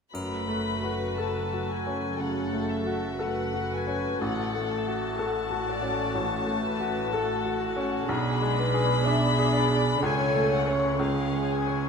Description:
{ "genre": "classical, romantic movement for piano and orchestra", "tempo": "57-63 BPM", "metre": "4/4", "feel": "rubato", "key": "F# minor", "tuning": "A4 = 440 Hz", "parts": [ { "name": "clear baby grand piano", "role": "melody", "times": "0.1-11.9 s", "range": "A1 to C#5", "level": "-30 LUFS", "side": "left 2 dB", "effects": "none" }, { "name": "rich chamber violin section", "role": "melody", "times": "0.1-11.9 s", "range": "E5 to B5", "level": "-32 LUFS", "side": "left 6 dB", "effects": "none" }, { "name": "warm chamber violin section", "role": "second line", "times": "0.1-11.9 s", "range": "F#4 to E5", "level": "-34 LUFS", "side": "left 5 dB", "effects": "none" }, { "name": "dark studio viola section", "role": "accompaniment", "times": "0.1-11.9 s", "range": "A3 to A4", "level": "-32 LUFS", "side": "right 3 dB", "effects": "none" }, { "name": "warm chamber cello section", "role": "bass", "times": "0.1-11.9 s", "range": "F#2 to C#3", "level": "-34 LUFS", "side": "right 2 dB", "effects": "none" }, { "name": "warm chamber double bass section", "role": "bass", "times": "0.1-11.9 s", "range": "F#1 to C#2", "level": "-34 LUFS", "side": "right 5 dB", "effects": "none" }, { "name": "triangle", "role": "percussion", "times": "0.1-2.2 s", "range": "none", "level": "-49 LUFS", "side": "left 1 dB", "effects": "none" } ], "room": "wet concert hall reverb, RT60 2.3 s", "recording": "none", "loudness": "-24 LUFS", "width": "side -6 dB against mid", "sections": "0.1-11.9 A section", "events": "none", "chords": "0.1 F#m; 4.2 F#m/A; 8.1 G#dim/B; 10.0 F#m/C#; 11.0 C#", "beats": "| 0.14 1.18 2.20 3.20 | 4.21 5.18 6.15 7.13 | 8.09 9.07 10.03 10.99" }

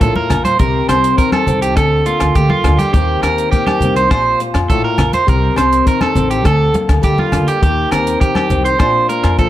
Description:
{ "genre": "highlife guitar band", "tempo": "102 BPM", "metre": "4/4", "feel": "straight", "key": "Bb major", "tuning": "A4 = 441 Hz", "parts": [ { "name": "fingerpicked steel-string acoustic guitar", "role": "accompaniment", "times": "0.0-9.5 s", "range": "A2 to A4", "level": "-19 LUFS", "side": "left 5 dB", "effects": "none" }, { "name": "electric guitar at the edge of break-up", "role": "arpeggios", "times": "0.0-9.5 s", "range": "F4 to C5", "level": "-16 LUFS", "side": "right 4 dB", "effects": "tape echo" }, { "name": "upright bass", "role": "bass", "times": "0.0-9.5 s", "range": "A1 to F2", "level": "-17 LUFS", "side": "equal", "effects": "none" }, { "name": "compact cocktail drum kit", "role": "drums", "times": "0.0-9.5 s", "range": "hi-hat, kick drum, rim click", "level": "-18 LUFS", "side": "equal", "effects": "none" }, { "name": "congas", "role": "percussion", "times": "0.2-8.6 s", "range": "none", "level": "-20 LUFS", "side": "equal", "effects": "none" }, { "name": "agogo bells", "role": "percussion", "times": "0.3-9.4 s", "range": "none", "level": "-26 LUFS", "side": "left 6 dB", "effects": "none" } ], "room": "light reverb, small room ambience", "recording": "none", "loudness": "-11 LUFS", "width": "side -13 dB against mid", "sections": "0.0-9.5 A section", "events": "none", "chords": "0.0 Bb5; 0.6 Cm; 1.8 Gmadd9/D; 2.9 Eb6; 4.1 Bb5; 5.3 Cm; 6.5 Gmadd9/D; 7.6 Eb6; 8.8 Bb", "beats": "0.01 0.59 1.18 | 1.77 2.35 2.94 3.53 | 4.11 4.70 5.28 5.87 | 6.46 7.04 7.63 8.21 | 8.80 9.39" }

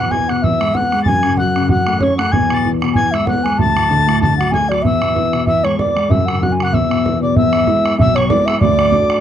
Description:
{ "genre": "celtic folk, Celtic reel", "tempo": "191 BPM", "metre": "4/4", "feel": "swing 55% on 8ths", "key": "E mixolydian", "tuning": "A4 = 439 Hz", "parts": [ { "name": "mellow baroque flute", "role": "melody", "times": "0.0-9.2 s", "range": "C#5 to A5", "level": "-17 LUFS", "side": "equal", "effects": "none" }, { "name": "mellow tin whistle", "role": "second line", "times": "0.0-9.2 s", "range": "C#6 to A6", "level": "-22 LUFS", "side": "left 5 dB", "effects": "none" }, { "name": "dark grand piano", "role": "accompaniment", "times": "0.0-9.2 s", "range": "B1 to F#4", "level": "-17 LUFS", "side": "left 2 dB", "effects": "none" }, { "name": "bodhran", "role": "percussion", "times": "0.1-9.2 s", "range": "none", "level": "-19 LUFS", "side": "right 2 dB", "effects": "none" } ], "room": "light reverb", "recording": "dry, close 1970s-style studio recording", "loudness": "-12 LUFS", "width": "side -10 dB against mid", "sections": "0.0-7.4 A section; 7.4-9.2 A section", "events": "none", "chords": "0.0 E; 1.1 F#m; 2.3 E; 3.6 D; 4.8 E; 6.1 F#5; 6.7 E5; 7.4 E; 8.6 D", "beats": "0.13 0.45 0.76 | 1.08 1.39 1.71 2.02 | 2.34 2.65 2.96 3.28 | 3.59 3.91 4.22 4.54 | 4.85 5.16 5.48 5.79 | 6.11 6.42 6.73 7.05 | 7.36 7.67 7.99 8.30 | 8.61 8.93" }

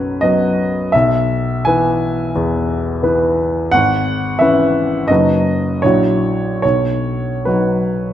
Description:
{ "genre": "classical, romantic character piece for solo piano", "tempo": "71-89 BPM", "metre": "4/4", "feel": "rubato", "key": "B major", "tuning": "A4 = 441 Hz", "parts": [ { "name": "warm upright piano", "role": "solo", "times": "0.0-8.1 s", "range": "F#1 to G#5", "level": "-14 LUFS", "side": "equal", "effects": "none" } ], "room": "moderate recital hall reverb, RT60 1.5 s", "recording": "none", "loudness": "-13 LUFS", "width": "side -11 dB against mid", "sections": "0.0-8.1 A section", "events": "none", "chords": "0.0 B; 0.9 E/B; 3.7 C#m7/G#; 5.1 B/F#; 5.8 F#7/A#; 6.6 B", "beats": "0.22 | 0.93 1.65 2.34 3.03 | 3.72 4.40 5.09 5.83 | 6.63 7.46" }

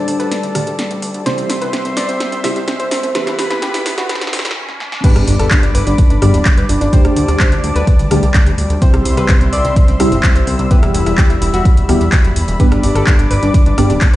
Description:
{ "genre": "progressive house", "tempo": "127 BPM", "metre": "4/4", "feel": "straight", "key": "G major", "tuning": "A4 = 440 Hz", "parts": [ { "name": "warm analog pad", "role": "sustained chords", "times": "0.0-14.2 s", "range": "G3 to E6", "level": "-22 LUFS", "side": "left 1 dB", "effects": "chorus, sidechain pumping" }, { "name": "soft round pluck", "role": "arpeggios", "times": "0.0-14.2 s", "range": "C4 to E5", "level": "-21 LUFS", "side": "equal", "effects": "chorus, cassette tape, sidechain pumping, digital delay" }, { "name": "deep mellow chord stab", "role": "stabs", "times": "0.0-13.9 s", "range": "G2 to G4", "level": "-18 LUFS", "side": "equal", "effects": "chorus, phaser, sidechain pumping, digital delay" }, { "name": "fat analog bass", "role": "bass", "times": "0.0-14.2 s", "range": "D1 to E2", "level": "-18 LUFS", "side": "equal", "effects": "sidechain pumping, high-pass filter" }, { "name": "riser and sub drop", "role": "sound effects", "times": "2.4-6.9 s", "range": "none", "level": "-26 LUFS", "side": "equal", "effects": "none" }, { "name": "deep house drum kit", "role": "drums", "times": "0.1-14.2 s", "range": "crash cymbal, handclaps, hi-hat, rim click, snare drum", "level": "-21 LUFS", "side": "equal", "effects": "overdrive, sidechain pumping on hats, sidechain pumping on cymbals" }, { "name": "electronic kick drum", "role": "drums", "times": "5.0-14.1 s", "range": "none", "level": "-11 LUFS", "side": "equal", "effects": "overdrive" } ], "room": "light reverb, digital ambience", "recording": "played on a big sound system in a bare room, large studio reverb, high-pass filter, nothing above 10.9 kHz", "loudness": "-11 LUFS", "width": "side -16 dB against mid", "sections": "0.0-5.0 A section; 5.0-14.2 B section", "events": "build-up 0.0-5.0; drum fill 0.0-4.6, 4.7-5.0; filter sweep on synth stab 0.0-5.0; filter sweep 0.0-5.0; riser 2.4-5.0; break 4.6-5.0; drop 5.0-14.2; impact 5.0-6.9", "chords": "0.0 Dsus4; 1.3 C; 3.1 Em; 5.0 G; 6.9 Dsus4; 8.8 C; 10.7 Em; 12.6 G", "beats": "0.32 0.79 | 1.26 1.73 2.21 2.68 | 3.15 3.62 4.09 4.57 | 5.04 5.51 5.99 6.46 | 6.93 7.40 7.87 8.35 | 8.82 9.29 9.76 10.24 | 10.71 11.18 11.65 12.13 | 12.60 13.07 13.54 14.02" }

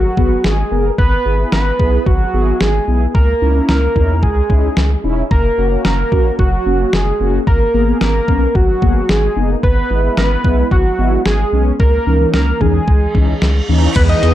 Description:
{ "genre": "synth-pop", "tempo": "111 BPM", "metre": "4/4", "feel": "straight", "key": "unclear", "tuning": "A4 = 439 Hz", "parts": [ { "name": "fat analog lead", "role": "melody", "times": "0.0-14.3 s", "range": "F#4 to D#5", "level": "-17 LUFS", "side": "right 1 dB", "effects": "chorus, slapback echo" }, { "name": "round analog bass", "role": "bass", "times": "0.0-14.3 s", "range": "E1 to E2", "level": "-16 LUFS", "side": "equal", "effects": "none" }, { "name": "mellow synth brass", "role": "accompaniment", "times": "0.2-14.3 s", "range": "E3 to B4", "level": "-20 LUFS", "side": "left 1 dB", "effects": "chorus, phaser" }, { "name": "clean 12-bit digital drum machine", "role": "drums", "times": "0.2-14.3 s", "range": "crash cymbal, hi-hat, kick drum, snare drum", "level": "-16 LUFS", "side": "equal", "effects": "none" }, { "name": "reverse cymbal and impact", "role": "sound effects", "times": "13.1-14.3 s", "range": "none", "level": "-25 LUFS", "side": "right 2 dB", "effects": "none" }, { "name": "phased string machine", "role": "sustained chords", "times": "14.0-14.3 s", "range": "E3 to B3", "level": "-18 LUFS", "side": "right 1 dB", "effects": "ensemble chorus, phaser" } ], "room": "light reverb", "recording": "dark, warm production", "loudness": "-12 LUFS", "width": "side -13 dB against mid", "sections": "0.0-14.0 A section", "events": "reverse cymbal 13.1-14.0; impact 14.0-14.3", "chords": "0.0 G#madd9; 1.0 E/G#; 3.1 C#madd9; 5.3 F#; 7.5 G#madd9; 9.6 E/G#; 11.8 C#madd9", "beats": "0.45 | 0.98 1.53 2.07 2.61 | 3.15 3.69 4.23 4.77 | 5.31 5.85 6.39 6.93 | 7.47 8.01 8.55 9.09 | 9.63 10.18 10.71 11.26 | 11.80 12.34 12.88 13.42 | 13.96" }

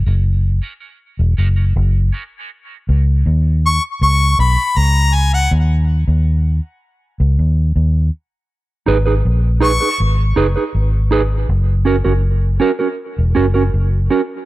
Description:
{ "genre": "dub reggae", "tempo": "80 BPM", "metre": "4/4", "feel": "straight", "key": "unclear", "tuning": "A4 = 440 Hz", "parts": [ { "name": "vintage muted fingered electric bass", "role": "bass", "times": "0.0-14.1 s", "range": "E1 to D#2", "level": "-13 LUFS", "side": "equal", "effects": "none" }, { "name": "mellow electric guitar", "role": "accompaniment", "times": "0.1-2.2, 8.9-14.2 s", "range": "C#4 to B4", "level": "-18 LUFS", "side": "right 5 dB", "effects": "high-pass filter, dub echo" }, { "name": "bright harmonica", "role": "melody", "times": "3.7-10.0 s", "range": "F#5 to C#6", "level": "-17 LUFS", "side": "left 2 dB", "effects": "dub echo" } ], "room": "small room ambience", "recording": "none", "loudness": "-13 LUFS", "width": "side -17 dB against mid", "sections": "0.0-14.5 A section", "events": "none", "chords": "0.0 F#; 2.5 Badd9 (rootless); 5.5 N.C.; 8.5 G#m; 11.5 F#", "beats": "0.26 1.01 1.75 | 2.50 3.25 4.00 4.75 | 5.50 6.25 7.00 7.75 | 8.49 9.24 9.99 10.74 | 11.49 12.24 12.98 13.73" }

